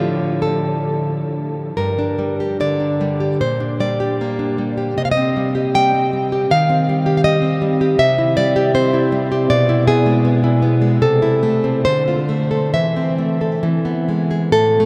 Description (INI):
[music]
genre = romantic piece for solo classical guitar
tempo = 63-83 BPM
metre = 2/4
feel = rubato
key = G minor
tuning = A4 = 440 Hz
[part]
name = nylon-string guitar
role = solo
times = 0.0-14.9 s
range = G2 to G5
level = -17 LUFS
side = equal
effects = none
[sound]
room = wet huge ambient reverb, RT60 7.9 s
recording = in a vast, echoing space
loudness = -17 LUFS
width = mono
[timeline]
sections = 0.0-1.8 A section; 1.8-14.5 B section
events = none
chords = 0.0 Dm; 1.8 Gm; 3.4 Gm/Bb; 5.0 Cm; 6.5 Cm/Eb; 8.0 C; 9.5 E/B; 11.0 Am/C; 11.8 Dm7; 12.7 Am/E; 13.6 E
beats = 0.87 | 1.76 2.59 | 3.40 4.19 | 4.98 5.74 | 6.50 7.24 | 7.99 8.75 | 9.50 10.25 | 11.02 11.85 | 12.75 13.64 | 14.53